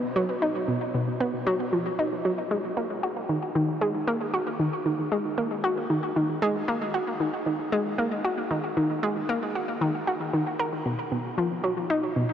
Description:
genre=ambient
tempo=115 BPM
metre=4/4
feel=straight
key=unclear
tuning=A4 = 442 Hz
part: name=analog pluck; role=solo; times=0.0-12.2 s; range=B2 to A#4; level=-25 LUFS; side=equal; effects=chorus, tape echo
room=wet huge ambient reverb, RT60 7.7 s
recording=dreamy mix soaked in reverb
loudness=-25 LUFS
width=side -9 dB against mid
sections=0.0-10.9 A section; 10.9-12.3 B section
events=none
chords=none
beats=| 0.42 0.94 1.47 1.99 | 2.51 3.03 3.55 4.08 | 4.60 5.12 5.64 6.16 | 6.68 7.21 7.73 8.25 | 8.77 9.29 9.81 10.34 | 10.86 11.38 11.90

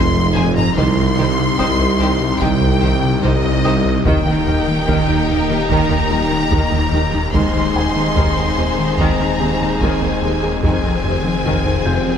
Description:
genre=cinematic, hybrid orchestral and electronic film score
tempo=73 BPM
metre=4/4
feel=straight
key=C minor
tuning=A4 = 440 Hz
part: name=warm symphonic violin section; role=melody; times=0.0-12.2 s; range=Eb5 to C6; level=-23 LUFS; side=left 3 dB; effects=none
part: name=rich studio violin section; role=second line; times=0.0-12.2 s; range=G4 to C5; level=-26 LUFS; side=left 3 dB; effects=none
part: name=rich symphonic viola section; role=accompaniment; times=0.0-12.2 s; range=C3 to Eb4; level=-23 LUFS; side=right 1 dB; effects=none
part: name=dark analog pad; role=sustained chords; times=0.0-12.2 s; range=Eb3 to Eb5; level=-25 LUFS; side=left 1 dB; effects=chorus, phaser
part: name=mellow French horn section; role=sustained chords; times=0.0-12.2 s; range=Eb3 to Eb4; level=-26 LUFS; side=left 3 dB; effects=none
part: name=resonant blip pluck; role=arpeggios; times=0.0-12.2 s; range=C3 to Ab4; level=-27 LUFS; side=right 4 dB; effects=none
part: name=smooth synth bass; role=riff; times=0.0-12.2 s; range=C2 to F3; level=-22 LUFS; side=left 2 dB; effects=none
part: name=rich symphonic cello section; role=bass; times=0.0-12.2 s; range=C2 to F2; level=-25 LUFS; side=right 3 dB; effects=none
part: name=rich symphonic double bass section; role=bass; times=0.0-11.9 s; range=F1 to Eb2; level=-25 LUFS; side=right 4 dB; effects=none
part: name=snarling distorted saw bass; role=bass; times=0.0-12.2 s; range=Eb1 to C2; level=-26 LUFS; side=equal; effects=distortion
part: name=warm tuba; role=bass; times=0.0-11.9 s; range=F1 to Eb2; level=-25 LUFS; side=right 2 dB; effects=none
part: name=felt-muted upright piano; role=texture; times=0.0-12.2 s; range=F4 to G6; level=-32 LUFS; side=left 2 dB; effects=none
part: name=taiko ensemble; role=drums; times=0.4-12.2 s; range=none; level=-24 LUFS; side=equal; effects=none
room=moderate scoring stage reverb, RT60 1.9 s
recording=none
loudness=-14 LUFS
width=side -8 dB against mid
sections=0.0-12.2 A section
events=none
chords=0.0 Fm7; 0.8 Cm; 4.1 Eb; 7.3 Ab/Eb; 10.6 Fm7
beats=| 0.77 1.59 2.41 3.23 | 4.06 4.88 5.70 6.52 | 7.34 8.17 8.99 9.81 | 10.63 11.45

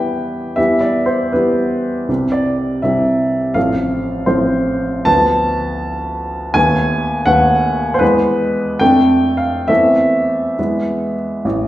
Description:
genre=classical, romantic character piece for solo piano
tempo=66-85 BPM (dotted quarters)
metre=6/8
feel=rubato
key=unclear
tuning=A4 = 440 Hz
part: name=warm upright piano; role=solo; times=0.0-11.7 s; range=A1 to A5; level=-13 LUFS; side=equal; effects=none
room=wet recital hall reverb, RT60 1.4 s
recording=heard from further back in the room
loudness=-13 LUFS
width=side -14 dB against mid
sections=0.0-11.4 A section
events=none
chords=0.0 Em; 2.1 C; 3.6 F/A; 5.1 Bm7b5/D; 6.5 B7/D#; 8.0 E; 8.8 Dm/F; 9.7 Am/E; 10.6 E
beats=| 0.57 1.34 | 2.09 2.83 | 3.56 4.27 | 5.07 5.83 | 6.55 7.27 | 8.01 8.80 | 9.69 10.57 | 11.44

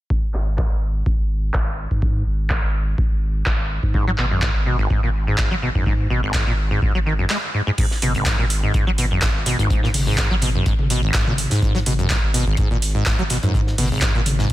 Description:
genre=acid house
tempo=125 BPM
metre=4/4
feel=swing 54% on 16ths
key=G# minor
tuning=A4 = 440 Hz
part: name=electronic kick drum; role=drums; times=0.1-14.5 s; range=none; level=-21 LUFS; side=equal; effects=none
part: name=saturated sub bass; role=bass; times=0.3-14.5 s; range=G#1 to G#2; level=-23 LUFS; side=equal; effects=sidechain pumping
part: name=booming analog drum machine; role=drums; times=0.3-14.4 s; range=crash cymbal, handclaps, hi-hat, toms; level=-24 LUFS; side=equal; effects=low-pass filter on snare, low-pass filter on cymbals, low-pass filter on hats, low-pass filter on toms, low-pass filter on room
part: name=acid bass, saw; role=riff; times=3.9-14.5 s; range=G#1 to G#3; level=-22 LUFS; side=equal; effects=overdrive, wide subtle chorus, cassette tape, sidechain pumping, dub echo
part: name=cloth-damped thuddy drum kit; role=drums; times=7.8-14.5 s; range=hi-hat, snare drum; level=-33 LUFS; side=left 2 dB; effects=sidechain pumping on hats, high-pass filter on hats, high-pass filter on snare, high-pass filter on room
room=little or no reverb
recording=dense, heavily limited modern master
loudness=-17 LUFS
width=side -15 dB against mid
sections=0.1-7.8 A section; 7.8-14.5 B section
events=filter sweep on drum 0.1-7.8; kick drops out 7.3-7.8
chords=0.1 G#5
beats=| 0.10 0.58 1.06 1.54 | 2.02 2.50 2.98 3.46 | 3.94 4.42 4.90 5.38 | 5.86 6.34 6.82 7.30 | 7.78 8.26 8.74 9.22 | 9.70 10.18 10.66 11.14 | 11.62 12.10 12.58 13.06 | 13.54 14.02 14.50

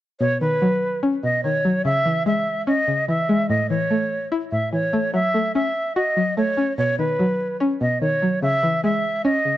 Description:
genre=hip hop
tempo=146 BPM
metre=4/4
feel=half-time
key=unclear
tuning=A4 = 439 Hz
part: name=jazz flute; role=melody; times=0.2-9.6 s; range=B4 to E5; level=-21 LUFS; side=right 1 dB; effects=low-pass filter
part: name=string-like resonator pluck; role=accompaniment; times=0.2-9.6 s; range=A2 to F#4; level=-22 LUFS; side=left 1 dB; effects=chorus, low-pass filter
room=light reverb, studio reverb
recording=dark, warm production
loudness=-19 LUFS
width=side -14 dB against mid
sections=0.2-9.6 A section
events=none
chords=0.2 Badd9; 1.9 C#m; 3.5 A; 5.1 F#m7; 6.8 Badd9; 8.4 C#m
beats=| 0.21 0.62 1.03 1.44 | 1.85 2.26 2.67 3.08 | 3.49 3.90 4.32 4.73 | 5.14 5.55 5.96 6.37 | 6.78 7.19 7.60 8.02 | 8.43 8.84 9.25

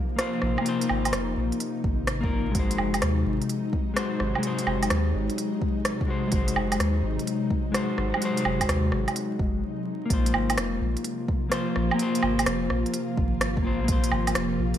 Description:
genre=future garage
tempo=127 BPM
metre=4/4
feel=swing 67% on 16ths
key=unclear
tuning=A4 = 440 Hz
part: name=clean electric guitar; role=accompaniment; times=0.0-14.8 s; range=Ab3 to C5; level=-28 LUFS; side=left 3 dB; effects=sidechain pumping, digital delay
part: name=ethereal airy pad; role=sustained chords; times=0.0-14.8 s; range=C3 to F4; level=-31 LUFS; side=equal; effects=ensemble chorus, built-in reverb, sidechain pumping
part: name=organic electronic drum kit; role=drums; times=0.2-14.8 s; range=hi-hat, rim click, woodblock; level=-29 LUFS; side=right 2 dB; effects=none
part: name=soft dub sub bass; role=bass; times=0.4-14.7 s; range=F1 to Eb2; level=-28 LUFS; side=equal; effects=sidechain pumping
part: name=electronic kick drum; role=drums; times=1.8-14.0 s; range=none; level=-27 LUFS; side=equal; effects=overdrive
room=moderate lush hall reverb, RT60 1.7 s, digital ambience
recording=bright 1980s-style digital production, vinyl crackle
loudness=-23 LUFS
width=side -10 dB against mid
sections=0.0-10.1 A section; 10.1-14.8 B section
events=break 9.6-10.1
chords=0.0 Bbsus2; 2.5 Ab7; 10.1 Bbsus2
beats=0.18 | 0.66 1.13 1.60 2.08 | 2.55 3.02 3.49 3.96 | 4.44 4.91 5.38 5.85 | 6.33 6.80 7.27 7.74 | 8.22 8.69 9.16 9.63 | 10.11 10.58 11.05 11.52 | 12.00 12.47 12.94 13.41 | 13.89 14.36

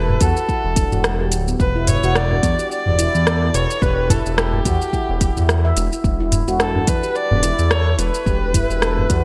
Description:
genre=organic downtempo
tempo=108 BPM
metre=4/4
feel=swing 57% on 16ths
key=E dorian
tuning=A4 = 441 Hz
part: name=warm kamancheh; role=melody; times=0.0-9.2 s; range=G4 to D5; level=-25 LUFS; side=equal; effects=digital delay
part: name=handpan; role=arpeggios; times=0.0-9.2 s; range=B3 to E5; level=-27 LUFS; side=equal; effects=digital delay
part: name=smooth synth bass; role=bass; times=0.0-9.2 s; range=D1 to E2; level=-22 LUFS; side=equal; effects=sidechain pumping
part: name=udu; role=percussion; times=0.1-9.1 s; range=none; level=-24 LUFS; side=equal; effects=none
part: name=electronic kick drum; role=drums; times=0.2-9.2 s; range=none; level=-22 LUFS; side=equal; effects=small room ambience
part: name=organic electronic drum kit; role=drums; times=0.2-9.2 s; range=hi-hat, rim click, shaker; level=-25 LUFS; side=equal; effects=small room ambience, gated reverb
room=moderate lush hall reverb, RT60 1.9 s, small room ambience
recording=bright 1980s-style digital production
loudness=-18 LUFS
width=mono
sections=0.0-9.2 A section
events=none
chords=0.0 A5/E; 1.6 E7(no3)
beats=0.49 1.04 | 1.60 2.15 2.71 3.27 | 3.82 4.38 4.93 5.49 | 6.04 6.60 7.16 7.71 | 8.27 8.82

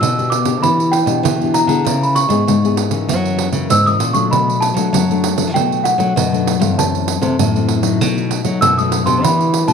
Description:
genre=samba and choro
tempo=98 BPM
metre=4/4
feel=straight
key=unclear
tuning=A4 = 438 Hz
part: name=celesta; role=melody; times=0.0-9.7 s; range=F#5 to E6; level=-17 LUFS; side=right 1 dB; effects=none
part: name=nylon-string guitar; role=accompaniment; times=0.0-9.7 s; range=F#2 to Ab4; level=-19 LUFS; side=left 9 dB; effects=none
part: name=nylon-string guitar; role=bass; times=0.0-9.7 s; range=F#2 to F#3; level=-19 LUFS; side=right 1 dB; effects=none
part: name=pandeiro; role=percussion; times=0.0-9.7 s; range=none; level=-20 LUFS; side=right 10 dB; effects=none
room=moderate echo chamber reverb, RT60 1.8 s, small room reverb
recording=1960s-style stereo with parts hard left and right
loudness=-13 LUFS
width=side -6 dB against mid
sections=0.0-9.7 A section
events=none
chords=0.0 Em7; 1.9 C#m7; 3.1 F#7; 4.3 Bm7; 6.8 F#m7b5; 8.0 B7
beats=0.01 0.62 1.24 | 1.85 2.47 3.08 3.70 | 4.31 4.93 5.54 6.16 | 6.77 7.39 8.01 8.62 | 9.23

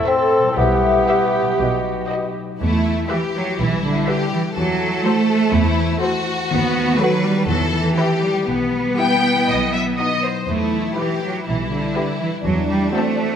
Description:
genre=cinematic, playful, whimsical film cue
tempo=122 BPM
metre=4/4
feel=straight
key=E minor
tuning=A4 = 440 Hz
part: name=mellow hollow large flute ensemble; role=second line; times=0.0-2.4 s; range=C5 to E5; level=-23 LUFS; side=left 5 dB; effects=none
part: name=warm clarinet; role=second line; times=0.0-2.4 s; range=F#4 to A4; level=-26 LUFS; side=left 1 dB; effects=none
part: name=mellow bassoon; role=accompaniment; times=0.0-2.4 s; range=B3 to C4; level=-20 LUFS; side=equal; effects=none
part: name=rich studio viola section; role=accompaniment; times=0.0-13.3 s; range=C4 to B4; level=-26 LUFS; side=right 2 dB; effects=none
part: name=concert harp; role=arpeggios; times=0.0-13.4 s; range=A2 to C5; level=-25 LUFS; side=left 6 dB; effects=none
part: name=rich studio violin section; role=melody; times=0.1-13.3 s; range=A4 to G5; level=-24 LUFS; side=left 3 dB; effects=none
part: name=rich studio violin section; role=second line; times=0.1-13.4 s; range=B3 to C5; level=-25 LUFS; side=left 3 dB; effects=none
part: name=dark French horn section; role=sustained chords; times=0.1-2.3 s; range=F#4 to E5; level=-28 LUFS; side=left 4 dB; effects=none
part: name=rich chamber double bass section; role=bass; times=0.6-12.8 s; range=B1 to E2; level=-24 LUFS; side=right 2 dB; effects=none
part: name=warm studio cello section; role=bass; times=0.6-13.4 s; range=B2 to B3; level=-21 LUFS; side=right 3 dB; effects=none
room=moderate scoring stage reverb, RT60 2.1 s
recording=none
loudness=-16 LUFS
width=side -8 dB against mid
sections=0.0-2.6 A section; 2.6-13.4 B section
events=none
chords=0.0 Am; 0.6 Em/B; 1.6 B; 2.6 Em; 4.6 F#m7b5/E; 6.5 B7/D#; 7.5 Em; 8.5 Em/B; 9.5 B; 10.5 Em; 12.4 F#m7b5/E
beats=0.07 | 0.58 1.09 1.60 2.11 | 2.61 3.11 3.60 4.09 | 4.57 5.05 5.54 6.02 | 6.50 6.99 7.48 7.97 | 8.47 8.98 9.48 9.98 | 10.48 10.97 11.46 11.95 | 12.44 12.93

